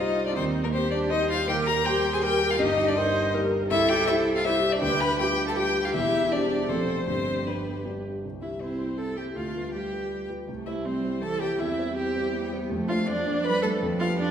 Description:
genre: quick classical-period movement for piano quartet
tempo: 161 BPM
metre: 3/4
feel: straight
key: C major from 3.7 s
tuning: A4 = 440 Hz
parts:
  - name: rich violin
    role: melody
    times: 0.0-14.3 s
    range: Bb4 to B5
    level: -28 LUFS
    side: left 4 dB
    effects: none
  - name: rich cello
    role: second line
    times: 0.0-14.3 s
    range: E3 to B4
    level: -31 LUFS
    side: right 4 dB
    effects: none
  - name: rich viola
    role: accompaniment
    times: 0.0-14.3 s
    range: C4 to C5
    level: -30 LUFS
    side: right 1 dB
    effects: none
  - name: warm concert grand piano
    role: accompaniment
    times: 0.0-14.3 s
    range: E1 to C5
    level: -29 LUFS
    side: left 1 dB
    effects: none
room: wet recital hall reverb, RT60 1.7 s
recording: recorded in a church or concert hall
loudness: -23 LUFS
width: side -8 dB against mid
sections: 0.0-8.2 A section; 8.2-14.3 B section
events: none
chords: 0.4 Cm/Eb; 1.5 Eb; 2.6 Eb/G; 3.7 C5; 4.8 G7/D; 5.9 C/E; 6.7 F; 7.1 G; 8.2 C; 9.4 G7/D; 10.5 C; 11.6 C/E; 12.7 Dm7/F

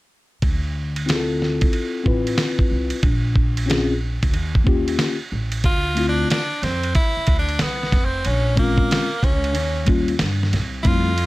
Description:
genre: hip hop, jazz-hop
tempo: 92 BPM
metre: 4/4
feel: swing 65% on 16ths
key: unclear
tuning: A4 = 440 Hz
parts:
  - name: upright bass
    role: bass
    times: 0.4-11.3 s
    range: F1 to G2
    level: -23 LUFS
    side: equal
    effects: none
  - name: dusty soul sampler-style drum kit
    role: drums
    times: 0.4-11.3 s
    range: hi-hat, kick drum, ride cymbal, snare drum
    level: -21 LUFS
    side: equal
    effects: none
  - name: mellow tine electric piano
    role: accompaniment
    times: 1.1-11.1 s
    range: G3 to B4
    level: -22 LUFS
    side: left 3 dB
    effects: none
  - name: edgy tenor saxophone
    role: melody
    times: 5.7-11.3 s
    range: Bb3 to F4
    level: -24 LUFS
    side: equal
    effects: analog delay
room: light reverb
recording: none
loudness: -18 LUFS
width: side -19 dB against mid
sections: 0.4-5.6 A section; 5.6-11.3 B section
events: none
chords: 0.4 Dm7; 3.0 Bbm7; 4.3 Eb9; 5.6 Dm7; 8.2 Bbm7; 9.6 Eb9

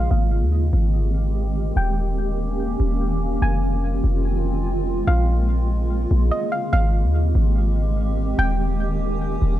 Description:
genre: hip hop, atmospheric cloud-rap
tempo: 145 BPM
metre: 4/4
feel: half-time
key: unclear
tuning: A4 = 440 Hz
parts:
  - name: soft round pluck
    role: melody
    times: 0.0-9.6 s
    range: Eb5 to Ab5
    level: -29 LUFS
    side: right 1 dB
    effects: chorus, low-pass filter, tape echo
  - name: granular cloud pad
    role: sustained chords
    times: 0.0-9.6 s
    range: Db3 to G4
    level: -25 LUFS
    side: right 1 dB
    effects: built-in reverb, low-pass filter
  - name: warm 808-style bass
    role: bass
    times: 0.0-9.6 s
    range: Eb1 to Eb2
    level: -20 LUFS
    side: equal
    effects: none
room: little or no reverb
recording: dry, gritty hardware recording, nothing above 10.9 kHz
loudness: -19 LUFS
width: side -13 dB against mid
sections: 0.1-6.7 A section; 6.7-9.6 B section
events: filter sweep 0.1-6.7; break 6.3-6.7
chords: 0.1 Abmaj7; 1.8 Eb7; 3.4 Fm7; 5.1 Bbm7; 6.7 Abmaj7; 8.4 Eb7

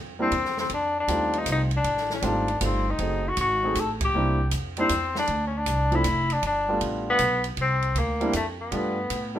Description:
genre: jazz, small-group swing and bop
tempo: 157 BPM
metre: 3/4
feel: swing 67% on 8ths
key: unclear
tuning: A4 = 441 Hz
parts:
  - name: upright bass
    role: bass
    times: 0.0-9.4 s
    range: F1 to A2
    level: -29 LUFS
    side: right 1 dB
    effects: none
  - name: warm tenor saxophone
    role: melody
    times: 0.2-9.4 s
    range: A3 to A4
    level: -25 LUFS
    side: left 2 dB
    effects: none
  - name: warm grand piano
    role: accompaniment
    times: 0.2-9.4 s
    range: F3 to Ab4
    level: -28 LUFS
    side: right 1 dB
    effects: none
  - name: open jazz drum kit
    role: drums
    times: 0.3-9.2 s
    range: hi-hat, kick drum, ride cymbal, snare drum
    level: -34 LUFS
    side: right 2 dB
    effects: none
room: moderate studio reverb, RT60 0.8 s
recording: minimal, uncompressed stereo recording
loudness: -22 LUFS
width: side -11 dB against mid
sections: 0.0-9.4 A section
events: band accent 3.9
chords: 0.3 C; 0.7 F9; 3.0 F#dim7; 4.1 C9; 5.3 Dm7; 6.4 G9; 7.6 C7sus2; 8.7 G9

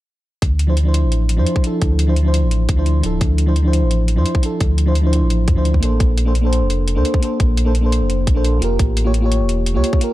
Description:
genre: liquid drum and bass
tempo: 172 BPM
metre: 4/4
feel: straight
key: D minor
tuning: A4 = 440 Hz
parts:
  - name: sub bass with octave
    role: bass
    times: 0.4-9.8 s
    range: D1 to G2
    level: -16 LUFS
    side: equal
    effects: none
  - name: electronic hi-hat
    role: drums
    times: 0.4-10.1 s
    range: none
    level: -28 LUFS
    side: left 1 dB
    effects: none
  - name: electronic kick drum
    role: drums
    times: 0.4-10.0 s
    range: none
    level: -17 LUFS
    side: equal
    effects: none
  - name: mellow FM electric piano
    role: accompaniment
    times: 0.7-10.1 s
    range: F3 to C#5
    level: -20 LUFS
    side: equal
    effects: chorus, ping-pong delay
room: little or no reverb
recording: dark, warm production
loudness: -14 LUFS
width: side -16 dB against mid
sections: 0.4-10.1 A section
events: none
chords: 0.4 Dm9; 6.0 Bbmaj9; 8.8 A7b9b13

